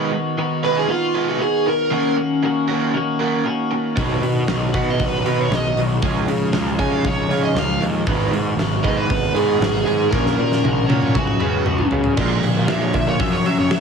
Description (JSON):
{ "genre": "indie rock", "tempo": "117 BPM", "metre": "4/4", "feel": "straight", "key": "F# major", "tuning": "A4 = 441 Hz", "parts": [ { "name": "raw garage guitar", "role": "riff", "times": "0.0-13.8 s", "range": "F#2 to C#5", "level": "-25 LUFS", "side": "right 8 dB", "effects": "overdrive, lush chorus, tape echo" }, { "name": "twelve-string electric guitar", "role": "riff", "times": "0.0-13.8 s", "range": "D#3 to G#4", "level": "-22 LUFS", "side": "left 4 dB", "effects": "none" }, { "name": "dark smooth lead guitar", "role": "melody", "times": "0.6-13.8 s", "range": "E#4 to G#5", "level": "-22 LUFS", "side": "right 2 dB", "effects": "overdrive, tape echo" }, { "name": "fuzz picked electric bass", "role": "bass", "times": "4.0-13.8 s", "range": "G#1 to F#3", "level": "-22 LUFS", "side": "right 1 dB", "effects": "overdrive" }, { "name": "big rock drum kit", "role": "drums", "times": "4.0-13.8 s", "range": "crash cymbal, hi-hat, kick drum, snare drum, toms", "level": "-23 LUFS", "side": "right 1 dB", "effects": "none" } ], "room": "studio reverb", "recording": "heavily compressed radio sound, multiband compression", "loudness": "-17 LUFS", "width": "side -6 dB against mid", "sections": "0.0-12.2 A section; 12.2-13.8 B section", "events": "drum fill 10.1-12.2; lead electric guitar solo 12.2-13.8", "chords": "0.0 G#m7; 1.9 F#6; 4.0 B; 6.0 C#add9; 8.1 G#m7; 10.1 F#6/A#; 11.2 C#7sus4; 12.2 A#7; 13.2 F#maj7" }